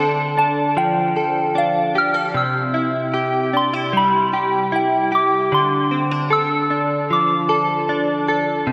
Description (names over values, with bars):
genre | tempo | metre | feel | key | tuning
dream pop | 76 BPM | 4/4 | straight | D dorian | A4 = 436 Hz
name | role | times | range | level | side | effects
soft synth bell | melody | 0.0-8.3 s | F5 to F6 | -22 LUFS | equal | chorus, phaser, tape echo
direct-recorded clean electric guitar | arpeggios | 0.0-8.7 s | C3 to A4 | -21 LUFS | equal | analog chorus, tape echo
room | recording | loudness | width
wet lush hall reverb, RT60 2.5 s | dreamy mix soaked in reverb | -19 LUFS | mono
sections
0.0-8.7 A section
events
none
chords
0.0 Dm; 2.4 Cmaj7; 5.5 Dm7